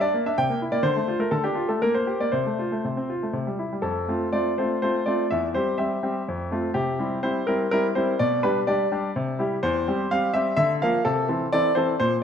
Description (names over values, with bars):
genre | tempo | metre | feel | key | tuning
classical-period piano sonatina | 125 BPM | 3/4 | rubato | F major | A4 = 440 Hz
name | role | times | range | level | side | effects
bright grand piano | solo | 0.0-12.2 s | E2 to G5 | -22 LUFS | equal | none
room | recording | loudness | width
wet recital hall reverb, RT60 1.4 s | none | -22 LUFS | side -7 dB against mid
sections
0.0-3.9 A section; 3.9-12.2 B section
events
none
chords
0.4 C7; 0.8 Dm; 1.8 Gm/Bb; 2.3 F/C; 3.4 C; 3.9 F; 5.3 C/E; 6.3 F; 6.8 C; 8.2 G/B; 9.2 C; 9.6 C/E; 10.6 Bb/D; 11.0 Am/C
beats
0.37 | 0.85 1.33 1.82 | 2.33 2.84 3.35 | 3.86 4.34 4.83 | 5.31 5.79 6.28 | 6.76 7.24 7.72 | 8.19 8.67 9.15 | 9.63 10.10 10.57 | 11.04 11.52 12.00